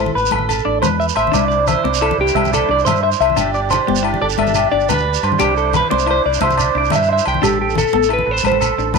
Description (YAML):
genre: highlife guitar band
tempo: 118 BPM (dotted quarters)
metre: 12/8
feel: straight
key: C major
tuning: A4 = 440 Hz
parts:
  - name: semi-hollow electric guitar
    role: melody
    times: 0.0-9.0 s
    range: G4 to G5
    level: -18 LUFS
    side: left 2 dB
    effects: phaser
  - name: clean electric guitar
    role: accompaniment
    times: 0.0-9.0 s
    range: B3 to E4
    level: -27 LUFS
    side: left 12 dB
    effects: none
  - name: clean electric guitar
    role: arpeggios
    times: 0.0-9.0 s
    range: G4 to E5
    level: -20 LUFS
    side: right 13 dB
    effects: slapback echo
  - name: deep dub fingered electric bass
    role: bass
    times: 0.0-9.0 s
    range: G1 to G2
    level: -23 LUFS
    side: equal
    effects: none
  - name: congas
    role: percussion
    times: 0.1-9.0 s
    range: none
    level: -24 LUFS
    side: left 13 dB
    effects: none
  - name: shekere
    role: percussion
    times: 0.2-9.0 s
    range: none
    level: -26 LUFS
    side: right 10 dB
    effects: none
  - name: agogo bells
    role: percussion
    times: 0.3-9.0 s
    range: none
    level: -25 LUFS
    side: left 14 dB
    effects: none
  - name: musette accordion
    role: sustained chords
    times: 1.3-9.0 s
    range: C4 to D5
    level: -26 LUFS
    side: right 11 dB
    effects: none
room: moderate echo chamber reverb, RT60 1.7 s, studio ambience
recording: 1960s-style stereo with parts hard left and right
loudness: -13 LUFS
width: side -4 dB against mid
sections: 0.0-9.0 A section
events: none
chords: 0.0 Amadd9; 1.3 Cadd9; 3.4 G; 5.4 Cadd9; 7.4 Amadd9